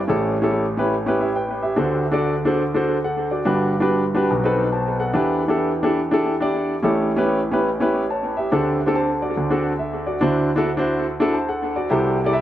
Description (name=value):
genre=gospel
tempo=142 BPM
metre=4/4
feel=swing 64% on 8ths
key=unclear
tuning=A4 = 440 Hz
part: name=warm grand piano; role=solo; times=0.0-12.4 s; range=G1 to A5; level=-18 LUFS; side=equal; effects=analog delay
room=moderate spring reverb, RT60 1.6 s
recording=echo-heavy mix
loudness=-18 LUFS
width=side -12 dB against mid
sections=0.0-10.2 A section; 10.2-12.4 B section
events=none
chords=0.1 A7; 1.8 D7; 3.5 Gmaj7; 4.3 B7b9; 5.1 Em7; 6.8 A7; 8.5 D7sus4; 9.4 D7; 11.9 C6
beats=| 0.09 0.51 0.93 1.35 | 1.77 2.19 2.62 3.04 | 3.46 3.88 4.30 4.72 | 5.14 5.57 5.99 6.41 | 6.83 7.26 7.68 8.10 | 8.52 8.95 9.37 9.79 | 10.21 10.64 11.06 11.48 | 11.91 12.33